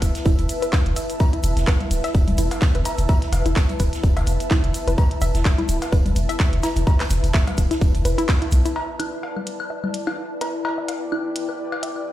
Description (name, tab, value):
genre	minimal techno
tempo	127 BPM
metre	4/4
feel	swing 56% on 16ths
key	E minor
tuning	A4 = 441 Hz
part	punchy sub bass	bass	0.0-8.6 s	D1 to B1	-21 LUFS	equal	sidechain pumping
part	electronic kick drum	drums	0.0-8.4 s	none	-17 LUFS	equal	none
part	minimal click drum kit	drums	0.0-11.9 s	handclaps, hi-hat	-29 LUFS	equal	none
part	soft-mallet drum kit	drums	0.0-12.1 s	hi-hat, snare drum, tambourine	-38 LUFS	right 1 dB	sidechain pumping on hats, high-pass filter on hats, low-pass filter on hats, high-pass filter on snare, low-pass filter on snare, sidechain pumping on perc, high-pass filter on perc, low-pass filter on perc, high-pass filter on room, low-pass filter on room
part	egg shaker	percussion	0.0-8.7 s	none	-38 LUFS	right 2 dB	none
part	bubbling stepped-filter texture	texture	0.0-12.1 s	D5 to E5	-35 LUFS	right 2 dB	chorus, built-in reverb, sidechain pumping
part	ethereal airy pad	texture	0.0-12.1 s	E4 to A5	-29 LUFS	left 1 dB	ensemble chorus, built-in reverb, tremolo, sidechain pumping
part	hollow square pluck	riff	0.3-11.9 s	E4 to E5	-28 LUFS	left 1 dB	chorus, sidechain pumping, dub echo
part	cowbell, congas and woodblock	percussion	0.7-12.0 s	none	-30 LUFS	left 3 dB	dub echo
room	small room reverb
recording	played on a big sound system in a bare room, stone room reverb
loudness	-18 LUFS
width	side -14 dB against mid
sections	0.0-8.8 A section; 8.8-12.1 B section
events	band accent 8.3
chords	0.0 E5; 8.8 Em